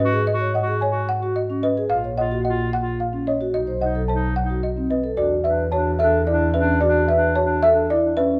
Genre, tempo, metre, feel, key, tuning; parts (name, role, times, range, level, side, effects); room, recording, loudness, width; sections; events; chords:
classical, minimalist pattern music; 110 BPM; 3/4; straight; A4 = 442 Hz
folk marimba with medium mallets; melody; 0.0-8.4 s; Cb5 to Gb5; -25 LUFS; equal
mellow clarinet; second line; 0.0-8.2 s; D4 to Gb4; -30 LUFS; equal
small celesta; arpeggios; 0.0-8.4 s; Eb5 to A5; -28 LUFS; equal
vibraphone with soft mallets; arpeggios; 0.0-8.4 s; C4 to Db5; -27 LUFS; equal
dark double bass; bass; 0.0-8.3 s; Bb1 to Ab2; -28 LUFS; equal
moderate large studio reverb, RT60 1.3 s; -21 LUFS; mono
0.0-5.2 A section; 5.2-8.4 B section
0.0 Ab7(no3); 1.9 Gbmaj7/Bb; 3.5 Cb7b9; 5.2 E9sus4